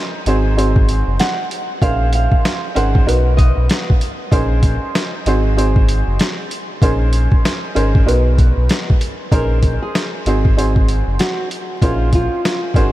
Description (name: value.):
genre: hip hop, boom-bap hip-hop.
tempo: 96 BPM.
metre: 4/4.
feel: swing 60% on 16ths.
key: Bb minor.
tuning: A4 = 440 Hz.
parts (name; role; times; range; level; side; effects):
nylon-string guitar; melody; 0.0-3.8, 9.3-12.9 s; F4 to Ab5; -24 LUFS; right 1 dB; high-pass filter, low-pass filter, tape echo.
warm upright piano; accompaniment; 0.0-12.9 s; B3 to C5; -21 LUFS; right 1 dB; cassette tape, high-pass filter, low-pass filter.
sub bass with octave; bass; 0.3-12.9 s; Gb1 to B1; -16 LUFS; equal; none.
boom bap sampler-style drum kit; drums; 0.3-12.9 s; hi-hat, kick drum, snare drum; -17 LUFS; equal; none.
room: light reverb, small room reverb.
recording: vinyl crackle.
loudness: -13 LUFS.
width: side -16 dB against mid.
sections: 0.0-9.3 A section; 9.3-12.9 B section.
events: none.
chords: 0.3 Ab7; 1.8 Bbm11; 3.1 Bmaj7; 4.3 Bbm11; 5.3 Ab7; 6.8 Bbm11; 8.1 Bmaj7; 9.3 Bbm11; 10.3 Ab7; 11.8 Bbm11.